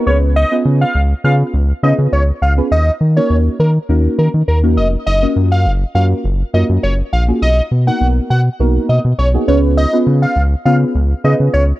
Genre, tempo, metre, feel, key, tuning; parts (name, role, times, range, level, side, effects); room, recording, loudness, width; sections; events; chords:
dance-pop; 102 BPM; 4/4; straight; A4 = 445 Hz
deep mellow chord stab; accompaniment; 0.0-11.6 s; A#3 to B4; -18 LUFS; equal; chorus, phaser
fat analog lead; melody; 0.1-11.6 s; A#4 to F#5; -18 LUFS; equal; tape echo
round analog bass; bass; 0.1-11.7 s; E#1 to D#3; -13 LUFS; equal
digital ambience; dry, close 1970s-style studio recording; -11 LUFS; side -16 dB against mid
0.0-11.8 A section
0.1 C#7; 2.7 D#m7; 5.1 F#maj7; 7.4 Bmaj7; 9.5 C#7